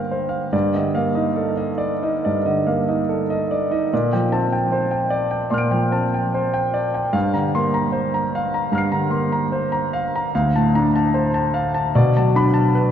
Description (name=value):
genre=classical, impressionist solo piano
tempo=69-77 BPM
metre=4/4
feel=rubato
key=G minor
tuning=A4 = 444 Hz
part: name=warm concert grand piano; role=solo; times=0.0-12.9 s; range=D2 to D7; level=-18 LUFS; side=equal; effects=none
room=wet cathedral reverb, RT60 5.5 s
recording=in a vast, echoing space, nothing above 7.6 kHz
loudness=-18 LUFS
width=side -9 dB against mid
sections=0.0-12.9 A section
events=none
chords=0.0 Gm7; 0.5 Ebmaj7#11/G; 3.9 Bb69; 7.1 Gm7; 10.3 Dm7; 11.9 Bm7